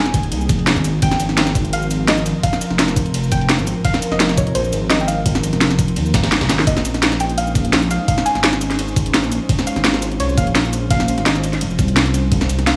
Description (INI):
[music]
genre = liquid drum and bass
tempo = 170 BPM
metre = 4/4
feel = straight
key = unclear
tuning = A4 = 440 Hz
[part]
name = soft round pluck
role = melody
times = 0.0-12.7 s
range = C5 to Ab5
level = -26 LUFS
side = equal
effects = chorus, cassette tape, digital delay
[part]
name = glassy FM pad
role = sustained chords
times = 0.0-12.8 s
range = F3 to C5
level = -28 LUFS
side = equal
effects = ensemble chorus, built-in reverb, sidechain pumping
[part]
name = dark detuned saw bass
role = bass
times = 0.0-12.8 s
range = Eb1 to Eb2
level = -22 LUFS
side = equal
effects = none
[part]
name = breakbeat sampler-style drum kit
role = drums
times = 0.1-12.8 s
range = ride cymbal, snare drum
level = -27 LUFS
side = equal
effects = high-pass filter on cymbals, high-pass filter on snare
[part]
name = drum and bass drum kit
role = drums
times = 0.1-12.7 s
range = hi-hat, shaker, snare drum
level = -22 LUFS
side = equal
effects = overdrive
[part]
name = electronic kick drum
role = drums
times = 0.1-12.4 s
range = none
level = -21 LUFS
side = equal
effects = overdrive
[sound]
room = light reverb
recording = studio reverb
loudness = -17 LUFS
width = mono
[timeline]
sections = 0.0-6.7 A section; 6.7-12.8 A section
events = drop 0.0-6.7, 6.7-12.8; band accent 6.3; drum fill 6.5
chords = 0.0 Fm11; 0.8 Ab69; 6.7 Bbm11